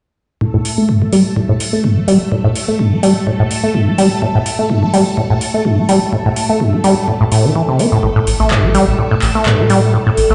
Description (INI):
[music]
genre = acid house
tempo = 126 BPM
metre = 4/4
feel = swing 54% on 16ths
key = unclear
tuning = A4 = 440 Hz
[part]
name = string machine, full ensemble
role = sustained chords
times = 0.4-10.3 s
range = A3 to A4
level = -22 LUFS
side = equal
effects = phaser, ensemble chorus, sidechain pumping
[part]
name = acid bass, saw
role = riff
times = 0.4-10.3 s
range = G2 to C4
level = -15 LUFS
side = equal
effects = dub echo
[part]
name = electronic kick drum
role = drums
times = 0.4-10.0 s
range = none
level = -29 LUFS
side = equal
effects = overdrive, high-pass filter on kick
[part]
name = electro analog drum machine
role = drums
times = 0.7-10.3 s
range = handclaps, hi-hat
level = -24 LUFS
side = equal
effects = overdrive
[part]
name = round analog bass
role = bass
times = 8.0-10.3 s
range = A1 to A2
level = -17 LUFS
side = equal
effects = tube saturation, sidechain pumping
[sound]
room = moderate spring reverb, RT60 2.0 s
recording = played on a big sound system in a bare room, large studio reverb, nothing above 10.4 kHz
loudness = -14 LUFS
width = mono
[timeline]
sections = 0.4-10.3 A section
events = filter sweep on acid bass 0.4-10.3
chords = 0.4 A5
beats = | 0.41 0.89 1.36 1.84 | 2.32 2.79 3.27 3.75 | 4.22 4.70 5.17 5.65 | 6.13 6.60 7.08 7.55 | 8.03 8.51 8.98 9.46 | 9.94